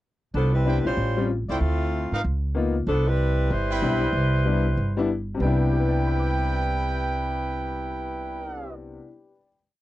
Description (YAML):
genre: jazz, big band swing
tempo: 190 BPM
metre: 4/4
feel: swing 64% on 8ths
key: C major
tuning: A4 = 440 Hz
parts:
  - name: mellow saxophone section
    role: melody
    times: 0.3-5.1 s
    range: F3 to C5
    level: -26 LUFS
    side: equal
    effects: none
  - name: upright bass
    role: bass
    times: 0.3-9.0 s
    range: G1 to Ab2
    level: -24 LUFS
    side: right 1 dB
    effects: none
  - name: bright upright piano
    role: accompaniment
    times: 0.6-9.7 s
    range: C3 to G6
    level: -28 LUFS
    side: left 4 dB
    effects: none
  - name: clear trumpet section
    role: stabs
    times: 0.7-8.7 s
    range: C4 to B5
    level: -29 LUFS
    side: right 2 dB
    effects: none
room: little or no reverb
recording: dry, close 1970s-style studio recording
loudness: -22 LUFS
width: side -15 dB against mid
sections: 0.3-5.4 A section; 5.4-7.9 final chord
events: none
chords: 0.3 Cmaj7; 1.0 A7alt; 1.6 Dm9; 2.2 Db13; 2.9 Cmaj7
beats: | 0.34 0.66 0.98 1.29 | 1.61 1.93 2.24 2.56 | 2.88 3.19 3.51 3.82 | 4.14 4.46 4.77 5.09 | 5.41 5.72 6.04 6.36 | 6.67 6.99 7.31 7.62